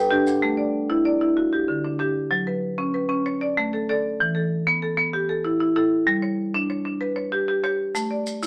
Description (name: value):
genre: southern african traditional, mbira-style interlocking cycle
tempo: 128 BPM (dotted quarters)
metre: 12/8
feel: straight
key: A mixolydian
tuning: A4 = 439 Hz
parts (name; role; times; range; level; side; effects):
- kalimba; arpeggios; 0.0-0.7 s; D4 to G5; -29 LUFS; equal; none
- marimba with hard mallets; arpeggios; 0.0-8.5 s; D3 to D5; -24 LUFS; equal; none
- maracas; percussion; 0.3-0.4, 8.0-8.5 s; none; -38 LUFS; equal; none
room: moderate studio reverb, RT60 0.7 s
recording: none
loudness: -23 LUFS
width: mono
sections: 0.4-8.5 A section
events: none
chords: 0.4 A5; 1.4 D; 2.3 F#5; 3.2 A; 4.2 Em; 6.1 G; 8.0 A